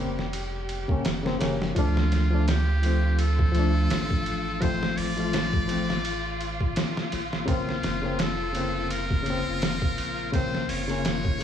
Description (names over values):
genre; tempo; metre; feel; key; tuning
trip hop; 84 BPM; 4/4; swing 56% on 16ths; unclear; A4 = 436 Hz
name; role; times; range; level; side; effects
barky reed electric piano; accompaniment; 0.0-11.4 s; Db3 to F4; -29 LUFS; left 2 dB; overdrive, tremolo, low-pass filter, tape echo
rich studio violin section; sustained chords; 0.0-11.4 s; G3 to G4; -36 LUFS; left 3 dB; none
warm sub bass; bass; 0.0-11.4 s; F1 to D2; -28 LUFS; right 1 dB; none
trip hop sampler-style drum kit; drums; 0.2-11.4 s; hi-hat, kick drum, ride cymbal, snare drum; -28 LUFS; equal; small room ambience
trumpet with metal mute; melody; 1.8-11.4 s; F4 to D5; -32 LUFS; left 1 dB; tape echo
room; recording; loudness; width
little or no reverb; dry, gritty hardware recording, vinyl crackle, small room ambience; -23 LUFS; side -9 dB against mid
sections
0.0-11.4 A section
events
filter sweep on reed electric piano 0.0-11.4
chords
0.0 Bbmadd9; 1.8 Dm; 7.5 Bbmadd9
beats
0.33 1.05 | 1.76 2.48 3.19 3.90 | 4.62 5.33 6.05 6.76 | 7.47 8.19 8.90 9.62 | 10.33 11.05